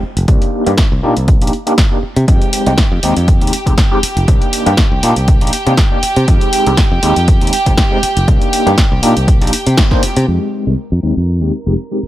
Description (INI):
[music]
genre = filtered disco house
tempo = 120 BPM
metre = 4/4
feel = swing 54% on 16ths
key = F dorian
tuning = A4 = 440 Hz
[part]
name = modern bright fingered electric bass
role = bass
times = 0.0-12.1 s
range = F1 to C3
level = -15 LUFS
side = equal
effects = sidechain pumping, low-pass filter
[part]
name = punchy analog drum machine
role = drums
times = 0.2-10.3 s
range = hi-hat, snare drum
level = -19 LUFS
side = equal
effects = low-pass filter on hats, low-pass filter on snare
[part]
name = overdriven tine electric piano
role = accompaniment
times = 0.3-12.0 s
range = Ab3 to C5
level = -18 LUFS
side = equal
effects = medium tremolo, phaser, sidechain pumping, low-pass filter
[part]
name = electronic kick drum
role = drums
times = 0.3-10.0 s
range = none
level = -12 LUFS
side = equal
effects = none
[part]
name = rich chamber string section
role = sustained chords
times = 2.3-12.1 s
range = G4 to Bb5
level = -20 LUFS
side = right 1 dB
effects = sidechain pumping, low-pass filter
[sound]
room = little or no reverb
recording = none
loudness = -10 LUFS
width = side -14 dB against mid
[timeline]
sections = 0.0-10.3 A section; 10.3-12.1 B section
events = filter sweep 0.0-10.3, 10.3-12.1; band accent 9.8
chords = 0.3 Cm7; 2.3 Fm7; 4.3 Cm7; 6.3 Fm7; 8.3 Cm7; 10.3 Fm7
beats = | 0.28 0.78 1.28 1.78 | 2.28 2.78 3.28 3.78 | 4.28 4.78 5.28 5.78 | 6.28 6.78 7.28 7.78 | 8.28 8.78 9.28 9.78 | 10.28 10.78 11.28 11.78